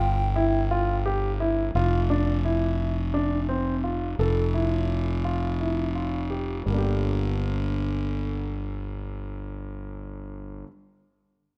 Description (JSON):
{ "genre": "contemporary instrumental, chamber music in an uneven meter", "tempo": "171 BPM (eighths)", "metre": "7/8", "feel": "straight", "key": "G dorian", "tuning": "A4 = 440 Hz", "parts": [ { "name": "baroque flute", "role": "melody", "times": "0.0-1.1 s", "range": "G5", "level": "-33 LUFS", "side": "equal", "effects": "none" }, { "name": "warm grand piano", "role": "arpeggios", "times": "0.0-10.7 s", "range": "G3 to A4", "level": "-30 LUFS", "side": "equal", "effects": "none" }, { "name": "fuzz fingered electric bass", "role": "bass", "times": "0.0-10.6 s", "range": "F1 to G1", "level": "-28 LUFS", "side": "equal", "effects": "overdrive" } ], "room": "moderate scoring stage reverb, RT60 1.8 s", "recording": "none", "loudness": "-26 LUFS", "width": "mono", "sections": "0.0-1.7 A section; 1.7-6.7 B section; 6.7-9.2 C section", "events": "none", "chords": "0.0 N.C.; 6.7 Gm" }